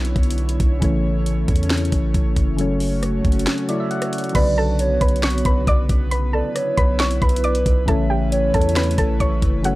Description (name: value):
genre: hip hop, trap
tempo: 136 BPM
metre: 4/4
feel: half-time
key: B minor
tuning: A4 = 443 Hz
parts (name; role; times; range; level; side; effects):
- soft electric-piano-like synth keys; accompaniment; 0.0-9.8 s; C#3 to F#5; -24 LUFS; left 1 dB; chorus
- airy breathy pad; sustained chords; 0.0-9.8 s; D3 to C#5; -29 LUFS; equal; chorus
- long sustained 808-style bass; bass; 0.0-9.8 s; F#1 to E2; -21 LUFS; equal; none
- trap drum kit; drums; 0.0-9.7 s; crash cymbal, finger snaps, hi-hat, kick drum, rim click, snare drum; -20 LUFS; equal; none
- hollow clarinet-like synth lead; second line; 4.3-9.2 s; B4 to E5; -24 LUFS; right 2 dB; chorus
- soft round pluck; melody; 4.4-9.8 s; F#4 to D6; -25 LUFS; equal; chorus, analog delay
room: little or no reverb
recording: dry, gritty hardware recording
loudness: -17 LUFS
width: side -18 dB against mid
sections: 0.0-4.3 A section; 4.3-9.8 B section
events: kick muted 3.5-4.3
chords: 0.0 Bmadd9; 0.8 F#m; 4.3 Bmadd9; 7.9 A